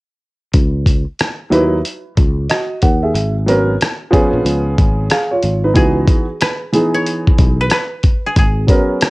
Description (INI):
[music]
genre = hip hop, jazz-hop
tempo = 92 BPM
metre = 4/4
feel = swing 64% on 16ths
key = C# minor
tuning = A4 = 444 Hz
[part]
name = sustaining fretless electric bass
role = bass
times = 0.5-8.7 s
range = G#1 to D#2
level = -17 LUFS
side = equal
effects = lush chorus
[part]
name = dusty soul sampler-style drum kit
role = drums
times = 0.5-9.1 s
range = hi-hat, kick drum, rim click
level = -14 LUFS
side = equal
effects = cassette tape
[part]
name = warm grand piano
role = accompaniment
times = 1.5-9.1 s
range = E3 to F#5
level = -16 LUFS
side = right 1 dB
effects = cassette tape, plate reverb
[part]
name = koto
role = melody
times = 5.8-9.1 s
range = G#4 to C#5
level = -22 LUFS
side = equal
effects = cassette tape, plate reverb
[sound]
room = light reverb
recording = home recording on cassette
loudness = -12 LUFS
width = side -22 dB against mid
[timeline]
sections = 0.5-5.8 A section; 5.8-9.1 B section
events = none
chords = 0.5 C#madd9; 3.1 G#m11; 4.5 C#7; 5.8 C#m11; 8.4 G#m11